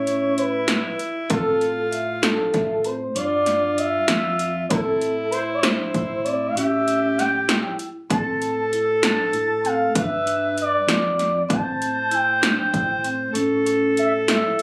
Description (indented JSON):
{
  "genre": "progressive instrumental, band music in an uneven meter",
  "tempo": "194 BPM (eighths)",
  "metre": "11/8",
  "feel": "straight",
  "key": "A minor",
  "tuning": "A4 = 442 Hz",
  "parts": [
    { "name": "expressive portamento lead", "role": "melody", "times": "0.0-14.6 s", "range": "A4 to A5", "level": "-25 LUFS", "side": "equal", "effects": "chorus" },
    { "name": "breathy alto saxophone", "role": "second line", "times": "0.0-14.6 s", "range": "E4 to C5", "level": "-27 LUFS", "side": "equal", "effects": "none" },
    { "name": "fingered electric bass", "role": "bass", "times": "0.0-14.4 s", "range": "F2 to A2", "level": "-34 LUFS", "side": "equal", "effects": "none" },
    { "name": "vibraphone with medium mallets", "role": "arpeggios", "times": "0.1-14.6 s", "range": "C4 to E5", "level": "-31 LUFS", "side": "equal", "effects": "none" },
    { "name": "80s electronic pad drums", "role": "drums", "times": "0.1-14.6 s", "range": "hi-hat, kick drum, snare drum", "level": "-26 LUFS", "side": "equal", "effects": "none" }
  ],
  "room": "light reverb",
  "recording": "recorded on a phone in the room, club reverb",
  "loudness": "-22 LUFS",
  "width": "mono",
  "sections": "0.0-14.6 A section",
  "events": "none",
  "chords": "0.0 A; 1.3 Dm7/A (rootless); 3.2 G5; 4.7 Am; 6.6 A7; 8.1 N.C.; 10.0 G6; 11.5 Am7; 13.4 A"
}